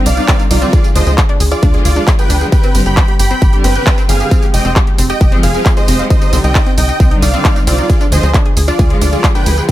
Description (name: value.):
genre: uplifting trance.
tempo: 134 BPM.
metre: 4/4.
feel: straight.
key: unclear.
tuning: A4 = 435 Hz.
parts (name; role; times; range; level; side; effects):
warm studio string section; sustained chords; 0.0-9.7 s; D3 to G4; -21 LUFS; equal; sidechain pumping.
dense compressed supersaw; melody; 0.1-9.7 s; F4 to B5; -18 LUFS; right 2 dB; sidechain pumping, dub echo.
analog pluck; arpeggios; 0.1-9.7 s; C4 to F5; -22 LUFS; left 2 dB; chorus, sidechain pumping, digital delay.
tight sequencer bass; bass; 0.1-9.6 s; F1 to D2; -14 LUFS; equal; sidechain pumping.
big-room dance drum kit; drums; 0.1-9.7 s; handclaps, hi-hat, tambourine; -19 LUFS; right 1 dB; none.
electronic kick drum; drums; 0.3-9.7 s; none; -12 LUFS; equal; none.
room: little or no reverb.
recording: none.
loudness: -9 LUFS.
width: side -14 dB against mid.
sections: 0.0-9.7 A section.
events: none.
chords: 0.0 Cmadd9; 0.7 Ddim; 2.5 Gsus4; 4.3 Fmadd9; 6.1 Cmadd9; 7.9 Ddim.